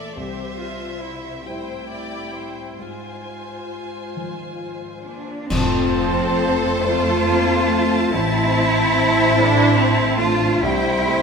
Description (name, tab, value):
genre	cinematic, emotional film score for orchestra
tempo	44-49 BPM (dotted quarters)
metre	6/8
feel	rubato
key	F major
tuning	A4 = 440 Hz
part	rich chamber violin section	melody	0.0-11.2 s	E5 to A5	-32 LUFS	equal	none
part	rich studio violin section	second line	0.0-11.2 s	A4 to D5	-28 LUFS	left 3 dB	none
part	dark grand piano	accompaniment	0.0-11.2 s	A1 to E5	-29 LUFS	left 4 dB	none
part	rich studio viola section	accompaniment	0.0-11.2 s	F3 to A4	-27 LUFS	right 1 dB	none
part	rich studio cello section	bass	0.0-11.2 s	Ab2 to F4	-22 LUFS	right 2 dB	none
part	cymbal swell, clash cymbals and concert bass drum	percussion	2.8-7.2 s	none	-27 LUFS	equal	none
part	clear clarinet	second line	5.1-11.2 s	C4 to F4	-29 LUFS	left 2 dB	none
part	dark French horn section	sustained chords	5.1-11.2 s	A3 to D4	-26 LUFS	left 6 dB	none
part	dark cor anglais	second line	5.5-11.2 s	C5	-28 LUFS	right 2 dB	none
part	small flute group	second line	5.5-11.2 s	G5 to A5	-28 LUFS	right 2 dB	none
part	dark studio double bass section	bass	5.5-11.2 s	A1 to F2	-24 LUFS	right 3 dB	none
room	wet scoring stage reverb, RT60 1.7 s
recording	minimal, uncompressed stereo recording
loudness	-15 LUFS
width	side -5 dB against mid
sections	0.0-5.5 A section; 5.5-11.2 B section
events	band accent 5.5-6.4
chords	0.2 C; 2.8 Ab6; 5.5 F; 8.1 Am; 10.6 C